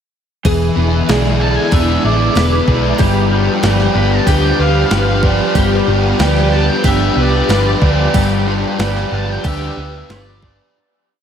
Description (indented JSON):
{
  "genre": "rock, shoegaze and dream pop",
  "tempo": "93 BPM",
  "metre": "4/4",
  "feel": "straight",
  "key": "unclear",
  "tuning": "A4 = 440 Hz",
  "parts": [
    { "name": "raw garage guitar", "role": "riff", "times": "0.4-10.8 s", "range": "E3 to D5", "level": "-20 LUFS", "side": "right 7 dB", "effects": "overdrive, reverse reverb" },
    { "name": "thick fuzz guitar", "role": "riff", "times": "0.4-10.8 s", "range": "E3 to D5", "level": "-20 LUFS", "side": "left 8 dB", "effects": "distortion, ensemble chorus" },
    { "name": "hollow-body short-scale picked electric bass", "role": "bass", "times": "0.4-10.6 s", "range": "E1 to D2", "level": "-16 LUFS", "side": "equal", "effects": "none" },
    { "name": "crisp 8-bit digital drum machine", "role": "drums", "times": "0.4-10.6 s", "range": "hi-hat, kick drum, snare drum", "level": "-18 LUFS", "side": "equal", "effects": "overdrive" },
    { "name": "phased string machine", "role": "sustained chords", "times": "0.5-10.7 s", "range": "D3 to G4", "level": "-21 LUFS", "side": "left 1 dB", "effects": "ensemble chorus, phaser" },
    { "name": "picked twelve-string acoustic guitar", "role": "arpeggios", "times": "0.5-10.8 s", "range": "G4 to B4", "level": "-22 LUFS", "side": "left 2 dB", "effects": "analog chorus, analog delay" },
    { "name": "octave-fuzz lead guitar", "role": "melody", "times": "1.4-10.6 s", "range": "D5 to B5", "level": "-23 LUFS", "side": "right 1 dB", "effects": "distortion, analog delay" }
  ],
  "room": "moderate huge ambient reverb, RT60 8.2 s",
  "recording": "dreamy mix soaked in reverb",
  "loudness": "-11 LUFS",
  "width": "side -8 dB against mid",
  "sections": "0.5-10.8 verse",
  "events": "fade-out 8.1-10.8",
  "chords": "0.5 E7; 3.0 G7"
}